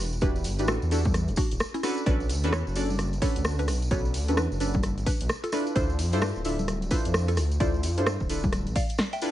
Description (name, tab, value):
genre	UK garage, two-step garage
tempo	130 BPM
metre	4/4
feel	swing 62% on 16ths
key	unclear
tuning	A4 = 437 Hz
part	mallet-like synth pluck	melody	0.0-9.3 s	C#4 to G5	-35 LUFS	right 1 dB	chorus, dub echo
part	deep mellow chord stab	stabs	0.0-9.3 s	C#4 to E5	-30 LUFS	equal	chorus
part	dark detuned saw bass	bass	0.0-8.7 s	D1 to G2	-28 LUFS	equal	none
part	house drum kit	drums	0.1-9.3 s	congas, hi-hat, rim click, snare drum	-31 LUFS	equal	none
part	tambourine	percussion	0.1-9.3 s	none	-40 LUFS	right 2 dB	none
part	electronic kick drum	drums	0.2-8.9 s	none	-28 LUFS	equal	none
room	digital ambience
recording	vinyl crackle, nothing above 10.4 kHz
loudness	-24 LUFS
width	side -13 dB against mid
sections	0.0-9.3 A section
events	drum fill 9.0-9.3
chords	0.0 Em7; 1.8 Bm7; 5.5 Dm7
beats	| 0.22 0.68 1.14 1.60 | 2.06 2.53 2.99 3.45 | 3.91 4.37 4.83 5.30 | 5.76 6.22 6.68 7.14 | 7.60 8.06 8.53 8.99